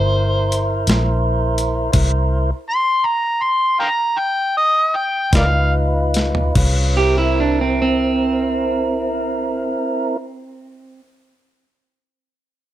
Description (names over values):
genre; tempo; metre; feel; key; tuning
slow blues; 48-57 BPM (dotted quarters); 12/8; straight; C mixolydian; A4 = 440 Hz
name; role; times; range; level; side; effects
overdriven harmonica; melody; 0.0-5.7 s; Bb4 to C6; -16 LUFS; equal; plate reverb
tonewheel organ; sustained chords; 0.0-10.2 s; C4 to C5; -21 LUFS; right 1 dB; overdrive, slow rotary speaker, plate reverb
vintage muted fingered electric bass; bass; 0.0-9.7 s; G1 to Db2; -19 LUFS; equal; none
breakbeat sampler-style drum kit; drums; 0.5-6.8 s; crash cymbal, hi-hat, kick drum, snare drum, toms; -19 LUFS; equal; none
electric guitar at the edge of break-up; second line; 7.0-11.0 s; C4 to G4; -20 LUFS; right 4 dB; plate reverb, analog delay
room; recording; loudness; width
light reverb; none; -15 LUFS; side -13 dB against mid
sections
0.0-6.6 A section; 6.6-11.6 B section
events
slowing down 0.5-6.6; drum fill 6.1-6.6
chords
0.0 C7; 5.3 Db9; 6.6 C7